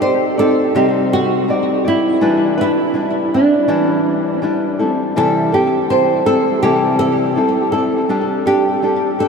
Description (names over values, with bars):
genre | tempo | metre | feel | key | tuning
pop | 82 BPM | 4/4 | swing 60% on 16ths | unclear | A4 = 439 Hz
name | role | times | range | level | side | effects
nylon-string guitar | melody | 0.0-9.3 s | D4 to C5 | -16 LUFS | right 1 dB | lush chorus, ping-pong delay
nylon-string guitar | accompaniment | 0.0-9.3 s | C3 to D5 | -16 LUFS | left 2 dB | none
room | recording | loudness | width
wet huge ambient reverb, RT60 8.4 s | dreamy mix soaked in reverb | -13 LUFS | side -5 dB against mid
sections
0.0-9.3 A section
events
none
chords
0.0 Cmadd9; 2.2 Em7; 4.8 C6; 8.1 Gsus2